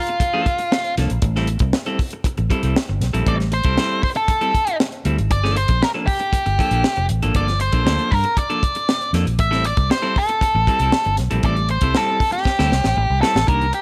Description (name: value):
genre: funk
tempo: 118 BPM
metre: 4/4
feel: straight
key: unclear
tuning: A4 = 440 Hz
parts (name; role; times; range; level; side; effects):
- octave-fuzz lead guitar; melody; 0.0-13.8 s; F4 to E5; -23 LUFS; equal; distortion
- electric guitar at the edge of break-up; accompaniment; 0.1-13.8 s; Eb3 to A4; -28 LUFS; equal; none
- tight funk drum kit; drums; 0.1-13.8 s; hi-hat, kick drum, snare drum; -24 LUFS; equal; none
- vintage muted fingered electric bass; bass; 1.0-13.7 s; F1 to G2; -22 LUFS; equal; none
room: little or no reverb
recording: none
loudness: -19 LUFS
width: mono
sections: 0.0-13.5 A section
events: drum fill 12.5-13.5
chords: 0.0 Gm9 (rootless); 1.2 Am7; 5.3 Gm9; 9.4 Am7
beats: 0.21 0.72 | 1.23 1.74 2.25 2.75 | 3.27 3.78 4.29 4.80 | 5.31 5.82 6.33 6.84 | 7.35 7.86 8.37 8.88 | 9.39 9.91 10.42 10.93 | 11.44 11.95 12.46 12.97 | 13.48